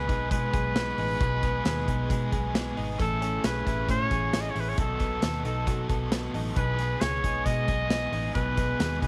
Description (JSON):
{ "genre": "jangly indie pop", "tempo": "134 BPM", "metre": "4/4", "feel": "straight", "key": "E major", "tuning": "A4 = 439 Hz", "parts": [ { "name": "clear trumpet", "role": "melody", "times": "0.0-9.1 s", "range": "A4 to D#5", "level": "-33 LUFS", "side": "equal", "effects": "tape echo" }, { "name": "biting overdriven guitar", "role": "accompaniment", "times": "0.0-9.1 s", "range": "B2 to A4", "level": "-39 LUFS", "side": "equal", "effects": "tremolo" }, { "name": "direct-recorded clean electric guitar", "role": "arpeggios", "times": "0.0-9.1 s", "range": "B2 to A4", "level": "-36 LUFS", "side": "equal", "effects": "tape echo" }, { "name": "vintage muted fingered electric bass", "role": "bass", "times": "0.0-9.1 s", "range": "G#1 to B2", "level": "-34 LUFS", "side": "equal", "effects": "none" }, { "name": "big rock drum kit", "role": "drums", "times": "0.1-9.1 s", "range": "hi-hat, kick drum, snare drum", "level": "-33 LUFS", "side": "equal", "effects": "none" }, { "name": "tambourine", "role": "percussion", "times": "3.0-9.1 s", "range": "none", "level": "-54 LUFS", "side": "equal", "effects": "none" } ], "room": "light reverb, small room ambience", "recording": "none", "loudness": "-28 LUFS", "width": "mono", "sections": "0.0-9.1 A section", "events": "none", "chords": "0.0 Emaj7; 3.0 Amaj7; 4.8 B7; 6.6 Emaj7" }